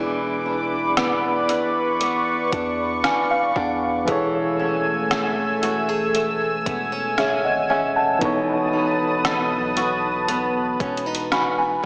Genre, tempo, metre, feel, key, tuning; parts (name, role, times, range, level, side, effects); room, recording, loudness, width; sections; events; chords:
contemporary R&B; 58 BPM; 4/4; straight; A4 = 440 Hz
tine electric piano; accompaniment; 0.0-11.9 s; E3 to B5; -27 LUFS; equal; overdrive, dub echo
lush unison pad; sustained chords; 0.0-11.9 s; A3 to E6; -26 LUFS; equal; chorus
flamenco guitar; arpeggios; 0.0-11.9 s; B2 to G#4; -29 LUFS; equal; dub echo
long sustained 808-style bass; bass; 0.0-11.8 s; E1 to E2; -38 LUFS; equal
downlifter; sound effects; 0.2-4.1 s; barely audible
detuned 8-bit digital drum machine; drums; 1.0-11.6 s; hi-hat, kick drum, rim click; -29 LUFS; equal; overdrive, dub echo
moderate plate reverb, RT60 3.2 s; echo-heavy mix, small speaker sound; -22 LUFS; mono
0.0-11.9 A section
tine electric piano fill 2.5-4.1
0.0 C#5/E; 4.1 F#m9/E; 8.2 B7/E